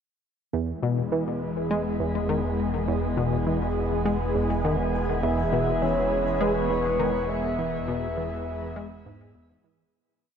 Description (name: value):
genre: ambient, sequencer-driven space music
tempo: 102 BPM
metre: 4/4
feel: straight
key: E major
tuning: A4 = 436 Hz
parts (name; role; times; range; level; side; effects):
- lush unison pad; sustained chords; 0.5-9.9 s; E3 to G#4; -28 LUFS; equal; chorus, phaser
- tight sequenced synth; riff; 0.5-9.8 s; E2 to G#3; -28 LUFS; left 1 dB; chorus, ping-pong delay
- fat analog bass; bass; 0.5-9.9 s; E1; -32 LUFS; right 1 dB; transformer saturation
- pulsing gated texture; texture; 0.5-10.0 s; B3 to B5; -39 LUFS; right 4 dB; chorus, built-in reverb
- soft octave-layered synth lead; melody; 5.2-9.4 s; B4 to E5; -28 LUFS; left 1 dB; chorus, ping-pong delay
room: wet shimmer reverb, RT60 6.6 s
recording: worn, warbling old tape, cassette tape, warbly pitch drift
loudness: -24 LUFS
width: side -7 dB against mid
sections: 0.5-9.9 A section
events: fade-in on synth texture 0.5-9.9; fade-out 6.8-9.9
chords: 0.5 E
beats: | 0.53 1.12 1.70 2.29 | 2.88 3.47 4.06 4.64 | 5.23 5.82 6.41 7.00 | 7.59 8.18 8.76 9.35